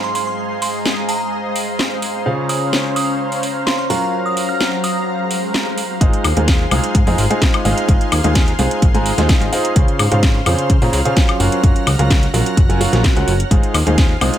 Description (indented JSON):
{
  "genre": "piano house",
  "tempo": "128 BPM",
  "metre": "4/4",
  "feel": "straight",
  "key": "Ab mixolydian",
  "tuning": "A4 = 440 Hz",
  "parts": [
    { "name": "glassy synth bell", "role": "melody", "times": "0.0-5.2 s", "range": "Bb5 to F6", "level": "-24 LUFS", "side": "right 3 dB", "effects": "chorus, digital delay" },
    { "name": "analog string pad", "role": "sustained chords", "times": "0.0-14.4 s", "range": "Gb3 to Bb6", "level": "-26 LUFS", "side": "left 2 dB", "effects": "ensemble chorus, sidechain pumping" },
    { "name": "clear baby grand piano", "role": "riff", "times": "0.0-14.4 s", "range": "Ab2 to Bb5", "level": "-20 LUFS", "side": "right 1 dB", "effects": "sidechain pumping, digital delay" },
    { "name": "ethereal airy pad", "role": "texture", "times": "0.0-14.4 s", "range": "Gb3 to C6", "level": "-25 LUFS", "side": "equal", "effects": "ensemble chorus, built-in reverb, sidechain pumping" },
    { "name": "house drum kit", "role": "drums", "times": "0.2-14.4 s", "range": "hi-hat, snare drum, woodblock", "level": "-21 LUFS", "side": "left 1 dB", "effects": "none" },
    { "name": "swell", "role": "sound effects", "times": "5.2-6.0 s", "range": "none", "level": "-28 LUFS", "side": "right 2 dB", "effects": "none" },
    { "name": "plucky analog bass", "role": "bass", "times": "6.0-14.3 s", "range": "Gb1 to Db3", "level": "-18 LUFS", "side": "equal", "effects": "tube saturation, sidechain pumping" },
    { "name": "electronic kick drum", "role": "drums", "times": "6.0-14.1 s", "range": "none", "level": "-14 LUFS", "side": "equal", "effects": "none" }
  ],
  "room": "light reverb",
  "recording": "none",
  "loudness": "-14 LUFS",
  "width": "side -11 dB against mid",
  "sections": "0.0-6.0 A section; 6.0-14.4 B section",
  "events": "swell 5.2-6.0; drop 6.0-14.4",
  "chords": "0.0 Ab6; 2.3 Dbmaj7; 3.9 Gbmaj7; 6.0 Ab6; 9.8 Dbmaj7; 11.4 Gbmaj7; 13.5 Ab6",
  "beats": "| 0.39 0.85 1.32 1.79 | 2.26 2.73 3.20 3.67 | 4.13 4.60 5.07 5.54 | 6.01 6.48 6.95 7.42 | 7.88 8.35 8.82 9.29 | 9.76 10.23 10.70 11.17 | 11.63 12.10 12.57 13.04 | 13.51 13.98"
}